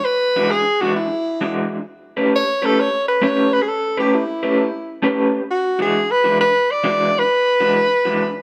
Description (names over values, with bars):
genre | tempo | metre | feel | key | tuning
blues | 132 BPM | 4/4 | swing 68% on 8ths | E mixolydian | A4 = 440 Hz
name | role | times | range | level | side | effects
mellow tenor saxophone | melody | 0.0-8.4 s | E4 to D5 | -19 LUFS | equal | none
electric guitar through a small old amp | riff | 0.4-8.3 s | E3 to B4 | -22 LUFS | equal | tremolo
room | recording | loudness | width
moderate plate reverb, RT60 2.5 s | none | -18 LUFS | mono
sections
0.0-8.4 A section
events
none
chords
0.0 E9; 1.9 A9; 5.5 E9